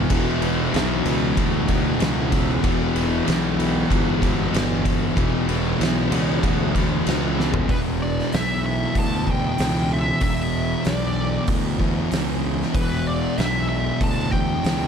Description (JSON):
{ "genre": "stoner and doom metal", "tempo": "95 BPM", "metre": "4/4", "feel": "straight", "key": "unclear", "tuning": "A4 = 439 Hz", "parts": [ { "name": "distorted electric guitar", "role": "riff", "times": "0.0-7.7 s", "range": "E2 to E3", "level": "-26 LUFS", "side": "equal", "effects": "distortion" }, { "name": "thick fuzz guitar", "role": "riff", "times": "0.0-14.9 s", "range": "E2 to E3", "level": "-26 LUFS", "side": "left 11 dB", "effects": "distortion" }, { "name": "thick fuzz guitar", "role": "riff", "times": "0.0-14.9 s", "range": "E2 to E3", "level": "-26 LUFS", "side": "right 12 dB", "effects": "distortion" }, { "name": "fuzz fingered electric bass", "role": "bass", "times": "0.0-14.9 s", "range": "E1 to D2", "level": "-26 LUFS", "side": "equal", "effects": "overdrive, tube saturation" }, { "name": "oversized low-tuned drum kit", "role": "drums", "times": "0.1-14.8 s", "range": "hi-hat, kick drum, ride cymbal, snare drum, toms", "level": "-24 LUFS", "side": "equal", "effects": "none" }, { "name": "fuzz lead guitar", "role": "melody", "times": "7.7-14.9 s", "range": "B4 to A5", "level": "-27 LUFS", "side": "equal", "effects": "wah, distortion, slapback echo" } ], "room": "small room ambience", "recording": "none", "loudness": "-19 LUFS", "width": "side -7 dB against mid", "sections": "0.0-7.7 A section; 7.7-14.9 B section", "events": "drum fill 7.4-7.7", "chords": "0.0 Em; 7.7 E5" }